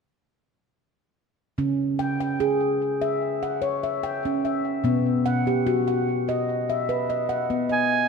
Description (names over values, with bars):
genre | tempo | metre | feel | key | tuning
world meditative | 74 BPM | 4/4 | straight | C# minor | A4 = 440 Hz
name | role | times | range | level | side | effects
handpan | arpeggios | 1.6-8.1 s | B2 to G5 | -22 LUFS | equal | tape echo
bright oboe | melody | 7.7-8.1 s | G#5 | -21 LUFS | right 6 dB | none
room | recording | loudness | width
wet concert hall reverb, RT60 2.4 s | none | -22 LUFS | side -5 dB against mid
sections
1.6-8.1 A section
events
none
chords
1.6 C#m; 4.8 B